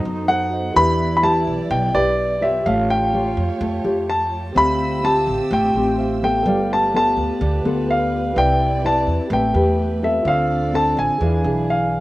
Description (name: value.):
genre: bossa nova.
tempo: 126 BPM.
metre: 4/4.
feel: straight.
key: unclear.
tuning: A4 = 440 Hz.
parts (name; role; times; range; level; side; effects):
breathy trombone; second line; 0.0-11.9 s; B3 to G4; -28 LUFS; right 3 dB; none.
bright tine electric piano; accompaniment; 0.0-12.0 s; F4 to E6; -29 LUFS; right 3 dB; slapback echo.
nylon-string guitar; accompaniment; 0.0-12.0 s; B2 to D5; -22 LUFS; left 2 dB; none.
warm symphonic string section; sustained chords; 0.0-12.0 s; A3 to E6; -32 LUFS; right 2 dB; none.
upright bass; bass; 0.0-12.0 s; G1 to F#2; -25 LUFS; right 1 dB; none.
warm concert grand piano; melody; 0.3-12.0 s; D5 to B5; -19 LUFS; equal; slapback echo.
room: little or no reverb.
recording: recorded outdoors, with no room sound.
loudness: -16 LUFS.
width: side -17 dB against mid.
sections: 0.0-12.0 A section.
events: none.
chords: 0.0 B7b9; 0.8 Em7; 2.7 Aaug7; 4.6 Dm11; 6.5 G9; 8.4 Cmaj9; 9.3 Am9; 10.3 Dm7; 11.2 E7b9.